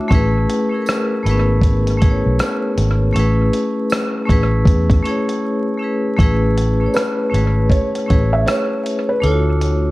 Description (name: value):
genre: lo-fi hip hop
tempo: 79 BPM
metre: 4/4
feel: swing 64% on 16ths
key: A major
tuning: A4 = 438 Hz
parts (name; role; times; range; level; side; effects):
- vibraphone with hard mallets; accompaniment; 0.0-9.9 s; A3 to E5; -19 LUFS; left 1 dB; cassette tape
- vintage muted fingered electric bass; bass; 0.1-9.9 s; G#1 to E2; -17 LUFS; equal; none
- dusty soul sampler-style drum kit; drums; 0.1-9.8 s; hi-hat, kick drum, rim click; -18 LUFS; equal; none
- tambourine; percussion; 0.9-8.7 s; none; -42 LUFS; right 5 dB; tape echo
- felt-muted upright piano; melody; 6.9-9.9 s; A4 to E5; -21 LUFS; right 1 dB; tape echo
room: small room ambience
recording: echo-heavy mix, vinyl crackle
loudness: -14 LUFS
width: side -19 dB against mid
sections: 0.0-6.2 A section; 6.2-9.9 B section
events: break 5.4-6.2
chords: 0.1 Amaj9; 9.2 Dmaj9